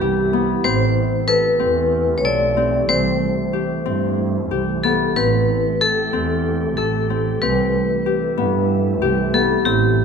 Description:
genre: contemporary instrumental, chamber music in an uneven meter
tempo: 186 BPM (eighths)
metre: 7/8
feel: straight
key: unclear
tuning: A4 = 435 Hz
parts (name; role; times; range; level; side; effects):
- vibraphone with hard mallets; second line; 0.0-10.0 s; G4 to D5; -20 LUFS; left 2 dB; none
- glassy FM pad; sustained chords; 0.0-10.0 s; C3 to B4; -26 LUFS; right 3 dB; ensemble chorus, built-in reverb
- Celtic harp; arpeggios; 0.0-10.0 s; B3 to A4; -23 LUFS; left 11 dB; none
- muted double bass; bass; 0.0-10.0 s; A1 to G2; -22 LUFS; right 6 dB; none
room: light reverb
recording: close, detailed microphones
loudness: -16 LUFS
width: side -6 dB against mid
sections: 0.0-10.0 A section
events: none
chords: 0.0 Cmaj7; 0.6 Am9; 2.9 Cmaj7; 5.2 Am9; 7.4 Cmaj7

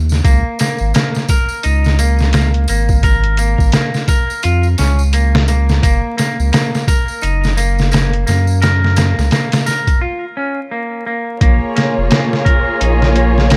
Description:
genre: trip hop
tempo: 86 BPM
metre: 4/4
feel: swing 59% on 16ths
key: unclear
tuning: A4 = 440 Hz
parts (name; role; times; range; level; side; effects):
- warm sub bass; bass; 0.0-13.6 s; F1 to Gb2; -16 LUFS; equal; tube saturation
- trip hop sampler-style drum kit; drums; 0.1-13.6 s; hi-hat, kick drum, snare drum; -17 LUFS; equal; none
- tambourine; percussion; 0.1-10.0 s; none; -32 LUFS; equal; none
- clean electric guitar; arpeggios; 0.2-13.6 s; Bb3 to Bb4; -22 LUFS; equal; vintage 12-bit sampler grit, delay
- muted studio string section; sustained chords; 11.4-13.6 s; Bb3 to Db5; -19 LUFS; equal; none
room: little or no reverb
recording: vinyl crackle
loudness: -14 LUFS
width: mono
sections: 0.0-11.4 A section; 11.4-13.6 B section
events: break 10.0-11.4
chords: 0.2 Db5; 5.8 Gb; 11.4 Bbm7

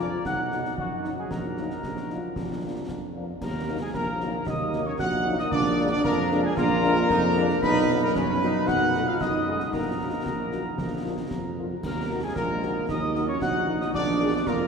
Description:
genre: military-style march for wind band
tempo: 114 BPM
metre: 2/4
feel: straight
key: Eb minor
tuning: A4 = 440 Hz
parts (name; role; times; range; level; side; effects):
- mellow trumpet section; melody; 0.0-14.7 s; F#4 to F#5; -31 LUFS; equal; none
- mellow euphonium; second line; 0.0-14.7 s; Ab3 to Gb4; -31 LUFS; right 1 dB; none
- mellow wooden piccolo; second line; 0.0-14.7 s; F#5 to Gb6; -32 LUFS; left 1 dB; none
- mellow French horn section; accompaniment; 0.0-14.3 s; F3 to Ab4; -34 LUFS; left 4 dB; none
- clear trombone section; sustained chords; 0.0-14.7 s; F3 to F4; -32 LUFS; right 2 dB; none
- mellow tuba; bass; 0.0-14.7 s; Bb1 to F#2; -30 LUFS; right 2 dB; none
- concert snare drum, concert bass drum and clash cymbals; drums; 0.3-14.7 s; none; -34 LUFS; left 1 dB; none
room: wet cathedral reverb, RT60 5.5 s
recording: recorded in a church or concert hall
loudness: -23 LUFS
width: side -6 dB against mid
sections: 0.0-3.4 A section; 3.4-14.7 B section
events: none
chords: 0.3 B; 1.3 Ebm/Bb; 2.4 Bb; 3.4 Ebm; 5.5 Bb7; 7.6 B; 8.7 B7; 9.7 Ebm/Bb; 10.8 Bb; 11.8 Ebm; 13.9 Bb7

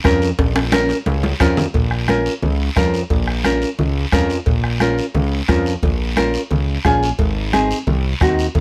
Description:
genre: latin, cumbia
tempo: 176 BPM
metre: 4/4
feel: straight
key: Bb minor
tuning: A4 = 444 Hz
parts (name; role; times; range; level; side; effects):
- nylon-string guitar; accompaniment; 0.0-8.5 s; C4 to Bb4; -20 LUFS; equal; none
- fat analog bass; bass; 0.0-8.6 s; Ab1 to F2; -22 LUFS; equal; none
- bombo; percussion; 0.0-8.6 s; none; -22 LUFS; equal; none
- congas; percussion; 0.0-8.6 s; none; -26 LUFS; equal; none
- timbales and cowbell; percussion; 0.0-8.6 s; none; -28 LUFS; equal; none
- guiro; percussion; 0.1-8.6 s; none; -32 LUFS; equal; none
room: light reverb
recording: none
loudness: -18 LUFS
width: mono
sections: 0.0-1.7 A section; 1.7-8.6 B section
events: drum fill 0.4-1.7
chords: 0.0 Bbm; 7.2 Ab

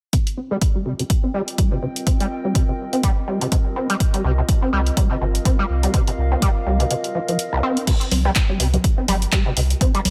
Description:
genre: acid house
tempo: 124 BPM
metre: 4/4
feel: swing 57% on 16ths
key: C minor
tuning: A4 = 442 Hz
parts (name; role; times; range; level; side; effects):
- deep acid bass; riff; 0.1-10.0 s; C2 to Eb4; -26 LUFS; equal; overdrive, lush chorus, sidechain pumping, delay
- electronic kick drum; drums; 0.1-9.9 s; none; -21 LUFS; equal; none
- punchy analog drum machine; drums; 0.1-10.1 s; congas, crash cymbal, handclaps, hi-hat, rim click; -27 LUFS; equal; none
- warbly tape-like pad; texture; 1.0-10.1 s; C4 to G5; -32 LUFS; equal; chorus, built-in reverb, phaser, sidechain pumping
- warm sub bass; bass; 4.2-10.1 s; G1 to C2; -22 LUFS; equal; tube saturation, sidechain pumping
room: light reverb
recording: none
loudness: -20 LUFS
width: mono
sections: 0.1-7.9 A section; 7.9-10.1 B section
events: filter sweep on acid bass 0.1-7.9; break 6.9-7.9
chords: 0.1 Cm7

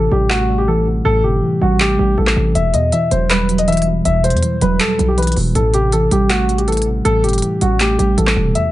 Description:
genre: hip hop, trap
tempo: 160 BPM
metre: 4/4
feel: half-time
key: unclear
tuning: A4 = 440 Hz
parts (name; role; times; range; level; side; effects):
- dark baby grand piano; melody; 0.0-8.7 s; F#4 to E5; -18 LUFS; left 1 dB; low-pass filter
- muted felt-like synth keys; accompaniment; 0.0-8.7 s; E2 to A3; -18 LUFS; right 1 dB; chorus, low-pass filter
- distorted 808-style bass; bass; 0.0-8.5 s; E1 to E2; -18 LUFS; equal; distortion
- trap drum kit; drums; 0.3-8.6 s; handclaps, hi-hat, rim click; -20 LUFS; equal; none
- ethereal airy pad; sustained chords; 8.7 s; E3 to F#4; -42 LUFS; equal; none
room: light reverb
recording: nothing above 10.8 kHz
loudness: -13 LUFS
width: side -15 dB against mid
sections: 0.0-8.7 A section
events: break 0.0-2.6; kick muted 8.6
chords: 0.0 Am7; 2.6 Emadd9; 5.6 Am7

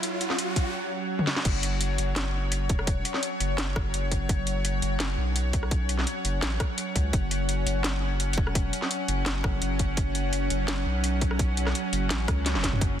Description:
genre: half-time drum and bass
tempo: 169 BPM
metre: 4/4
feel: half-time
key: unclear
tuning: A4 = 445 Hz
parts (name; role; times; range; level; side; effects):
- bowed-like drone; sustained chords; 0.0-13.0 s; F#3 to F#5; -31 LUFS; equal; built-in reverb, vintage 12-bit sampler grit, sidechain pumping
- saturated sub bass; bass; 0.0-13.0 s; E1 to C#2; -28 LUFS; equal; high-pass filter
- drum and bass drum kit; drums; 0.0-12.9 s; crash cymbal, hi-hat, rim click, snare drum, toms; -30 LUFS; equal; none
- riser; sound effects; 0.0-0.7 s; none; -31 LUFS; equal; none
- electronic kick drum; drums; 0.6-12.9 s; none; -27 LUFS; equal; overdrive
room: light reverb, digital ambience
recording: dense, heavily limited modern master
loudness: -24 LUFS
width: side -10 dB against mid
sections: 0.0-1.5 A section; 1.5-13.0 B section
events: build-up 0.0-1.5; riser 0.0-0.7; drum fill 1.2, 12.5-12.8; drop 1.5-13.0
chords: 0.0 F#5

